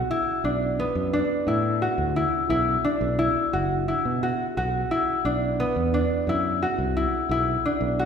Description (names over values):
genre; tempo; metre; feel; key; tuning
contemporary instrumental, chamber music in an uneven meter; 175 BPM (eighths); 7/8; straight; unclear; A4 = 440 Hz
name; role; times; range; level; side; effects
concert harp; arpeggios; 0.0-8.1 s; B3 to F#4; -23 LUFS; left 1 dB; none
fretless electric bass; bass; 0.4-8.1 s; F#1 to B2; -28 LUFS; equal; none
room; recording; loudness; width
wet scoring stage reverb, RT60 1.6 s; recorded in a church or concert hall; -22 LUFS; side -7 dB against mid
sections
0.0-8.1 A section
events
none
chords
0.0 Bm7; 2.5 D69/F#; 7.3 Bm